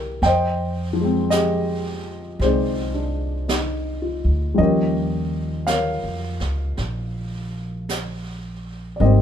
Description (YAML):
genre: jazz ballad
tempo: 55 BPM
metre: 4/4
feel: swing 69% on 8ths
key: Eb major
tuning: A4 = 440 Hz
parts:
  - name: dark baby grand piano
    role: accompaniment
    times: 0.0-9.2 s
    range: Eb3 to G5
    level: -21 LUFS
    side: left 1 dB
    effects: none
  - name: upright bass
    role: bass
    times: 0.0-9.2 s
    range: Ab1 to F2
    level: -24 LUFS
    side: equal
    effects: none
  - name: jazz brush drum kit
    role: drums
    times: 0.2-9.2 s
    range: brushed snare drum, hi-hat, snare drum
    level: -30 LUFS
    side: right 3 dB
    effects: none
room: light reverb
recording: minimal, uncompressed stereo recording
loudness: -20 LUFS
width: side -9 dB against mid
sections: 0.0-9.2 A section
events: none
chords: 0.2 Fm9; 4.6 Eb9